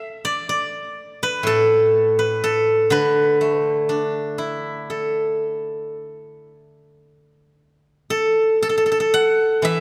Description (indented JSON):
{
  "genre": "chinese traditional, Chinese solo plucked strings",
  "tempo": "52-63 BPM",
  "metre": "4/4",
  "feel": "rubato",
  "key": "D gong mode",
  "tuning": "A4 = 440 Hz",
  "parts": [
    { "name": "steel-string zither", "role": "solo", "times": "0.0-9.8 s", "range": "A2 to F#5", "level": "-20 LUFS", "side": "equal", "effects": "none" }
  ],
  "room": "light reverb",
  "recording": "none",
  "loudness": "-20 LUFS",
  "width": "mono",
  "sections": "0.0-7.6 A section; 7.6-9.8 B section",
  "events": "none",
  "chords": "none"
}